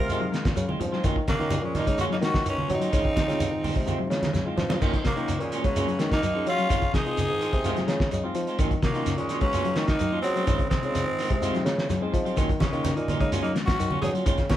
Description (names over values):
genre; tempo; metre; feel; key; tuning
afrobeat; 127 BPM; 4/4; straight; Eb dorian; A4 = 440 Hz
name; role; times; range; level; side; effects
growling tenor saxophone; melody; 0.0-14.6 s; Bb3 to Bb4; -29 LUFS; equal; none
bright alto saxophone; second line; 0.0-14.6 s; Gb3 to F4; -36 LUFS; right 3 dB; none
clean electric guitar; arpeggios; 0.0-14.6 s; C3 to Ab3; -33 LUFS; left 5 dB; none
mellow bassoon; bass; 0.0-14.5 s; Ab2 to Gb3; -30 LUFS; equal; none
bright reed electric piano; accompaniment; 0.1-14.3 s; Gb3 to Ab5; -35 LUFS; left 3 dB; none
clean electric guitar; stabs; 0.1-14.5 s; Eb3 to F4; -34 LUFS; right 3 dB; none
cloth-damped thuddy drum kit; drums; 0.1-14.6 s; crash cymbal, hi-hat, kick drum, snare drum; -28 LUFS; equal; none
shekere; percussion; 0.1-14.6 s; none; -33 LUFS; right 1 dB; none
congas; percussion; 0.5-4.8, 12.6-14.6 s; none; -31 LUFS; right 2 dB; none
room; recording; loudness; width
moderate studio ambience, RT60 0.5 s; band playing live in one room; -23 LUFS; side -12 dB against mid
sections
0.0-4.8 A section; 4.8-14.6 A section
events
drum fill 4.2-4.8; reed electric piano fill 7.6-8.6, 11.7-12.4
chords
0.0 Dbmaj9 (rootless); 1.0 Ebm9; 2.9 Dbmaj9; 4.8 Ebm9; 6.7 Dbmaj9; 8.6 Ebm9; 10.5 Dbmaj9; 12.4 Ebm9